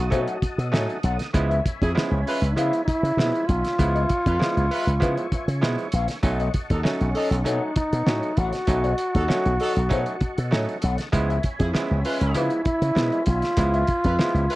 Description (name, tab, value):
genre	funk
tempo	98 BPM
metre	4/4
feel	straight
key	unclear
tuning	A4 = 440 Hz
part	warm trombone	melody	0.0-14.6 s	C#4 to F#4	-26 LUFS	equal	none
part	tonewheel organ	sustained chords	0.0-14.6 s	C#5 to D#6	-37 LUFS	equal	chorus vibrato, slow rotary speaker
part	slap bass with an envelope filter	bass	0.0-14.5 s	A1 to C#3	-24 LUFS	equal	none
part	mellow electric guitar	accompaniment	0.1-14.6 s	E#4 to F#5	-30 LUFS	left 5 dB	wah
part	bright clav	stabs	0.1-14.5 s	E#3 to F#4	-28 LUFS	right 2 dB	none
part	cloth-damped thuddy drum kit	drums	0.1-14.6 s	hi-hat, kick drum, snare drum	-26 LUFS	equal	none
part	mellow horn section	second line	1.8-14.6 s	E#3 to B4	-29 LUFS	right 2 dB	none
room	little or no reverb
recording	dry, close 1970s-style studio recording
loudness	-20 LUFS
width	side -18 dB against mid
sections	0.0-14.6 A section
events	none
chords	0.0 B9; 1.3 C#7#9; 6.2 B9; 11.1 C#7#9